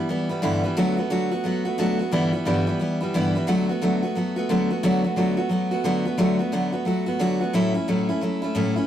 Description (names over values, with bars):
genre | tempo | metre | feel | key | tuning
rock | 177 BPM | 4/4 | swing 62% on 8ths | D major | A4 = 440 Hz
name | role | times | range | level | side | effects
picked steel-string acoustic guitar | solo | 0.0-8.9 s | G2 to F#4 | -21 LUFS | equal | none
room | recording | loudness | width
moderate studio reverb, RT60 0.5 s | rough rehearsal-room recording | -21 LUFS | side -10 dB against mid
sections
0.0-8.9 A section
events
none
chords
0.0 G6; 0.8 D6; 2.1 G6; 3.5 D6; 7.5 A6